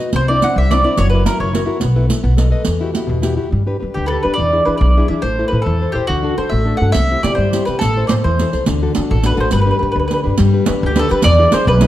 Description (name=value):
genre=italian folk, Italian serenade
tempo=141 BPM (dotted quarters)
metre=6/8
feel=rubato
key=E minor, G major from 3.5 s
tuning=A4 = 440 Hz
part: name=nylon-string guitar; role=accompaniment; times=0.0-11.9 s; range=B2 to D#5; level=-19 LUFS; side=left 3 dB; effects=none
part: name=riq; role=percussion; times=0.0-3.4, 6.9-11.9 s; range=none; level=-21 LUFS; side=right 4 dB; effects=none
part: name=upright bass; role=bass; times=0.1-11.9 s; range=F#1 to G3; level=-16 LUFS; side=equal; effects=none
part: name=mandolin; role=melody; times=0.2-1.8, 3.9-11.9 s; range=F#4 to F#5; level=-18 LUFS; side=right 1 dB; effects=none
room=moderate recital hall reverb, RT60 1.3 s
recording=dark, warm production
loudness=-13 LUFS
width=side -13 dB against mid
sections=0.0-3.5 A section; 3.5-10.4 B section; 10.4-11.9 B section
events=none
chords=0.1 Cadd9; 1.0 F#7; 1.8 B7sus4; 2.2 B7; 2.7 Emadd9; 3.5 G; 4.4 E7; 5.2 Am; 6.1 D; 6.9 C; 7.8 Am; 8.7 D; 9.5 G; 11.2 E7